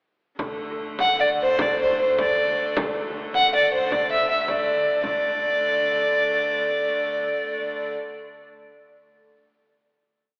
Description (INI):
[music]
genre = medieval dance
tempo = 100-117 BPM (dotted quarters)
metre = 6/8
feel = straight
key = unclear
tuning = A4 = 440 Hz
[part]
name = clear hurdy-gurdy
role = drone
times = 0.4-8.0 s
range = D3 to A3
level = -34 LUFS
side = equal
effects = none
[part]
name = frame drum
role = percussion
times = 0.4-5.2 s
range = none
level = -35 LUFS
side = equal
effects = none
[part]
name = dark fiddle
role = melody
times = 1.0-7.9 s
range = C5 to F#5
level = -23 LUFS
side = equal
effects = tape echo
[sound]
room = wet church reverb, RT60 3.0 s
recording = AM radio sound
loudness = -23 LUFS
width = mono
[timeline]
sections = 0.4-5.0 A section; 5.0-7.2 final chord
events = speeding up 0.4-7.2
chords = none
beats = | 0.40 0.99 | 1.59 2.18 | 2.77 3.35 | 3.92 4.49 | 5.04 5.59 | 6.13 6.66